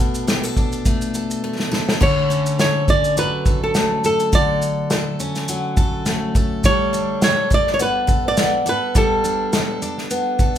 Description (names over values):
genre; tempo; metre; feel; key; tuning
acoustic pop; 104 BPM; 4/4; swing 55% on 16ths; D major; A4 = 442 Hz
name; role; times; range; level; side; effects
flamenco guitar; melody; 0.0-9.8 s; A4 to D5; -19 LUFS; equal; none
picked steel-string acoustic guitar; accompaniment; 0.0-10.6 s; B2 to A4; -22 LUFS; left 1 dB; none
unplugged drum kit; drums; 0.0-10.6 s; crash cymbal, kick drum, shaker, snare drum; -20 LUFS; equal; none
room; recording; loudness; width
moderate large studio reverb, RT60 1.1 s; band playing live in one room; -16 LUFS; side -10 dB against mid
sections
0.0-2.0 A section; 2.0-10.6 B section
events
drum fill 1.4-2.0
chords
0.0 Bm7; 2.0 Dmaj7; 6.6 Gadd9